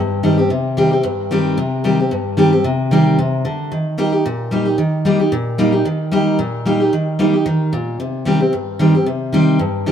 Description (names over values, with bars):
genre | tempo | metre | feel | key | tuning
bluegrass | 224 BPM | 4/4 | swing 55% on 8ths | unclear | A4 = 440 Hz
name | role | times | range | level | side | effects
picked steel-string acoustic guitar | solo | 0.0-9.9 s | G2 to G4 | -14 LUFS | equal | none
room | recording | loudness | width
light reverb, small room ambience | rough home demo mix | -14 LUFS | side -8 dB against mid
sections
0.0-3.7 A section; 3.7-9.9 B section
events
none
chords
0.0 Cm; 3.7 Eb; 8.0 Cm